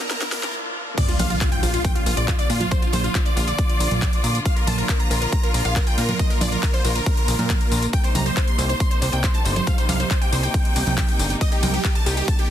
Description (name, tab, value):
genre	uplifting trance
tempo	138 BPM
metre	4/4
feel	straight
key	Bb major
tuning	A4 = 440 Hz
part	big supersaw lead	melody	0.0-12.5 s	F4 to C6	-27 LUFS	right 1 dB	phaser, sidechain pumping, dub echo
part	rich symphonic string section	sustained chords	0.0-12.5 s	Bb2 to F4	-30 LUFS	left 1 dB	sidechain pumping
part	tight sequenced synth	arpeggios	0.0-0.5 s	none	barely audible	none	none
part	big-room dance drum kit	drums	0.0-12.5 s	congas, crash cymbal, handclaps, hi-hat, snare drum, tambourine	-27 LUFS	right 2 dB	overdrive, sidechain pumping on hats, sidechain pumping on perc, sidechain pumping on cymbals
part	riser and impact	sound effects	0.0-2.7 s	none	-30 LUFS	equal	none
part	wide unison pluck	second line	1.0-12.5 s	F4 to C6	-31 LUFS	equal	sidechain pumping, dub echo
part	electronic kick drum	drums	1.0-12.4 s	none	-21 LUFS	equal	overdrive
part	plucky analog bass	bass	1.2-12.2 s	G1 to Bb2	-23 LUFS	equal	sidechain pumping
room	digital ambience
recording	dense, heavily limited modern master, high-pass filter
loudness	-18 LUFS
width	side -11 dB against mid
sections	1.0-12.5 A section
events	drum fill 0.0-0.5; riser 0.0-0.5; break 0.5-1.0; drop 1.0-12.5; impact 1.0-2.7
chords	0.0 Bb; 7.9 Cm7